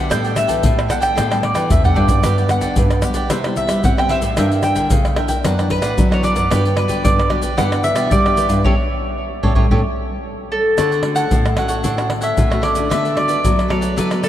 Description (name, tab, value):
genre	samba and choro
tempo	112 BPM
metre	4/4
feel	straight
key	D major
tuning	A4 = 440 Hz
part	mandolin	melody	0.0-14.3 s	A4 to G5	-20 LUFS	equal	tape echo
part	cavaquinho	accompaniment	0.0-14.3 s	D4 to G5	-26 LUFS	right 3 dB	none
part	nylon-string guitar	accompaniment	0.0-14.3 s	F#2 to F#4	-25 LUFS	left 3 dB	lush chorus
part	nylon-string guitar	bass	0.0-14.3 s	F#2 to C4	-20 LUFS	right 1 dB	none
part	tube shaker, surdo, pandeiro and tamborim	percussion	0.1-14.3 s	none	-18 LUFS	equal	none
room	moderate cathedral reverb, RT60 5.7 s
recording	dreamy mix soaked in reverb, cassette tape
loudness	-14 LUFS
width	side -12 dB against mid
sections	0.0-10.8 A section; 10.8-14.3 B section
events	drum fill 1.4-2.2; band accent 8.6-10.8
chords	0.1 A9sus4; 2.2 Gmaj7; 3.3 Cmaj7; 4.4 Gm6; 5.4 D69/F#; 6.5 Gmaj7; 7.6 Em7/G; 8.6 A7; 10.8 Dmaj7; 12.9 Bm7/D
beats	| 0.11 0.64 1.17 1.71 | 2.24 2.78 3.31 3.85 | 4.38 4.91 5.45 5.98 | 6.51 7.05 7.58 8.12 | 8.65 9.18 9.71 10.25 | 10.78 11.32 11.85 12.38 | 12.92 13.45 13.98